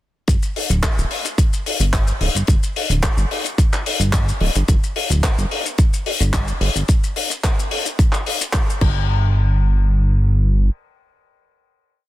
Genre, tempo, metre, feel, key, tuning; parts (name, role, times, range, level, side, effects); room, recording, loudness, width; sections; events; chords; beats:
nu-disco, nu disco; 109 BPM; 4/4; straight; A4 = 440 Hz
chorused synth bass; bass; 0.3-10.7 s; D1 to G1; -17 LUFS; equal
damped 70s drum kit; drums; 0.3-8.9 s; crash cymbal, handclaps, hi-hat, shaker; -22 LUFS; left 3 dB
electronic kick drum; drums; 0.3-8.9 s; -17 LUFS; equal
little or no reverb; dense, heavily limited modern master; -16 LUFS; side -16 dB against mid
0.3-9.1 drop; 9.1-11.3 final hit
drop 0.3-9.1
| 0.28 0.83 1.38 1.93 | 2.48 3.03 3.58 4.13 | 4.68 5.23 5.78 6.33 | 6.88 7.43 7.98 8.53 | 9.09 9.63 10.19